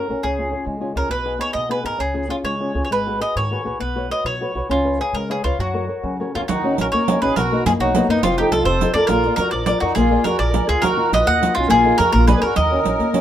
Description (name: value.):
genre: italian folk, Italian serenade.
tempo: 136 BPM (dotted quarters).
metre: 6/8.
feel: straight.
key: F# major, Eb minor from 6.5 s.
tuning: A4 = 440 Hz.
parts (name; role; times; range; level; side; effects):
bowl-back mandolin; melody; 0.0-13.2 s; D#4 to Gb5; -21 LUFS; equal; none.
flamenco guitar; accompaniment; 0.0-13.2 s; B2 to E#5; -21 LUFS; left 2 dB; none.
upright bass; bass; 0.1-13.2 s; F1 to F#3; -24 LUFS; equal; none.
accordion; second line; 6.4-13.2 s; B3 to Eb5; -24 LUFS; right 6 dB; light tremolo tuning.
riq; percussion; 6.5-13.2 s; none; -24 LUFS; right 5 dB; none.
room: moderate small room reverb, RT60 0.5 s.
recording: minimal, uncompressed stereo recording.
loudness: -16 LUFS.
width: side -10 dB against mid.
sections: 0.0-6.5 A section; 6.5-13.2 B section.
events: none.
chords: 0.2 C#; 1.1 G#m/B; 2.0 C#; 2.9 G#m7; 3.8 Bsus2; 4.7 C#7; 5.6 F#; 6.5 Ebm7; 7.4 Bmaj7; 8.2 F7; 9.1 Bb; 10.0 Bb7; 10.8 Ebmadd9; 11.7 Bb7sus4; 12.1 Bb7; 12.6 Ebm7.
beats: | 0.22 0.66 | 1.10 1.55 | 2.00 2.44 | 2.90 3.35 | 3.80 4.25 | 4.69 5.13 | 5.58 6.03 | 6.48 6.92 | 7.36 7.79 | 8.22 8.65 | 9.09 9.52 | 9.96 10.40 | 10.83 11.27 | 11.70 12.13 | 12.56 12.99.